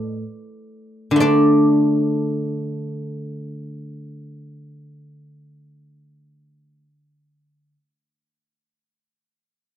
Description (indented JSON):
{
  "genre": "chinese traditional",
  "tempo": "free time",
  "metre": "none",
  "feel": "none",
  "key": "unclear",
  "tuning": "A4 = 440 Hz",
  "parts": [
    { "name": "guzheng", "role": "solo", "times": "0.0-7.7 s", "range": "A2 to D5", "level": "-18 LUFS", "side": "equal", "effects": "none" }
  ],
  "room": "moderate studio reverb, RT60 0.6 s",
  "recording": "rough home demo mix",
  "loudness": "-16 LUFS",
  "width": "side -10 dB against mid",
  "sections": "0.0-1.2 A section; 1.2-5.5 B section",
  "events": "slowing down 0.0-1.2",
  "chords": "none"
}